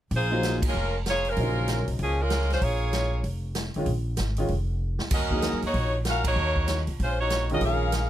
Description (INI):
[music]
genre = jazz, big band swing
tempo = 192 BPM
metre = 4/4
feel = swing 62% on 8ths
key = Bb minor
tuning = A4 = 440 Hz
[part]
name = upright bass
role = bass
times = 0.1-8.1 s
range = F1 to Gb2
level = -27 LUFS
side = equal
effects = none
[part]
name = swinging big-band drum kit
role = drums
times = 0.1-8.0 s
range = crash cymbal, hi-hat, kick drum, snare drum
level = -31 LUFS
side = right 1 dB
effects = none
[part]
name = clear saxophone section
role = melody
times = 0.2-8.1 s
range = F3 to F5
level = -27 LUFS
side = equal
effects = none
[part]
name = clear upright piano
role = accompaniment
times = 0.3-7.9 s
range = Db3 to C5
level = -30 LUFS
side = equal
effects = none
[sound]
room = little or no reverb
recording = close, detailed microphones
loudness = -24 LUFS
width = side -12 dB against mid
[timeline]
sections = 0.1-8.1 A section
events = band accent 0.6, 6.2; drum fill 4.8-5.1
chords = 0.1 Bbm7; 5.1 Ebm7